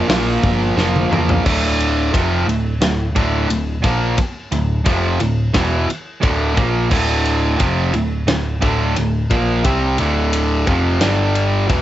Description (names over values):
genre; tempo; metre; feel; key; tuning
hard rock; 88 BPM; 4/4; straight; D minor; A4 = 442 Hz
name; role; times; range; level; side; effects
distorted electric guitar; riff; 0.0-11.8 s; D2 to C4; -22 LUFS; left 7 dB; overdrive, cassette tape
distorted electric guitar; riff; 0.0-11.8 s; D2 to C4; -20 LUFS; right 6 dB; overdrive, cassette tape
distorted electric guitar; riff; 0.0-1.4 s; Bb2 to Bb3; -26 LUFS; right 2 dB; none
overdriven picked electric bass; bass; 0.1-11.8 s; D1 to E2; -20 LUFS; equal; none
big rock drum kit; drums; 0.1-11.8 s; crash cymbal, hi-hat, kick drum, ride cymbal, snare drum, toms; -21 LUFS; equal; cassette tape
room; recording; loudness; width
light reverb; home recording on cassette, nothing above 7.9 kHz; -15 LUFS; side -13 dB against mid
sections
0.0-1.4 A section; 1.4-11.8 B section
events
drum fill 0.8-1.4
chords
0.0 Bb5; 1.4 Dm; 11.0 G5